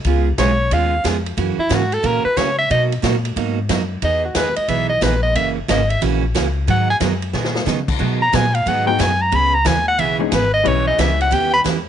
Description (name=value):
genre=country, western swing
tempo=181 BPM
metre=4/4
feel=swing 65% on 8ths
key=B major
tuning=A4 = 439 Hz
part: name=upright bass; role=bass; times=0.0-11.9 s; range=F#1 to C#3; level=-21 LUFS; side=left 2 dB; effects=none
part: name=swinging big-band drum kit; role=drums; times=0.0-11.8 s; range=crash cymbal, hi-hat, kick drum, ride cymbal, snare drum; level=-25 LUFS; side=left 2 dB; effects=none
part: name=picked steel-string acoustic guitar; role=accompaniment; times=0.1-11.8 s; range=B2 to G#4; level=-22 LUFS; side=right 10 dB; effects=none
part: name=bright soprano saxophone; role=melody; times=0.4-11.6 s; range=E4 to B5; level=-18 LUFS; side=equal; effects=none
part: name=honky-tonk upright piano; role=accompaniment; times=8.9-11.6 s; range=E3 to F#4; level=-24 LUFS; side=left 15 dB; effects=none
room=light reverb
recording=1960s-style stereo with parts hard left and right, nothing above 10.6 kHz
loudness=-15 LUFS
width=side -9 dB against mid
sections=0.0-11.9 A section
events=soprano saxophone solo 0.0-11.9; drum fill 7.3-7.7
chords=0.1 C#7; 1.4 F#7; 2.7 Bmaj7; 4.0 Emaj7; 5.4 F#7; 6.7 G#m9; 8.0 B6; 9.3 C#m9; 10.7 Em6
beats=| 0.05 0.38 0.71 1.04 | 1.38 1.71 2.04 2.37 | 2.70 3.03 3.36 3.69 | 4.03 4.36 4.69 5.02 | 5.35 5.68 6.01 6.34 | 6.68 7.01 7.34 7.67 | 8.00 8.33 8.66 8.99 | 9.33 9.66 9.99 10.32 | 10.65 10.98 11.32 11.65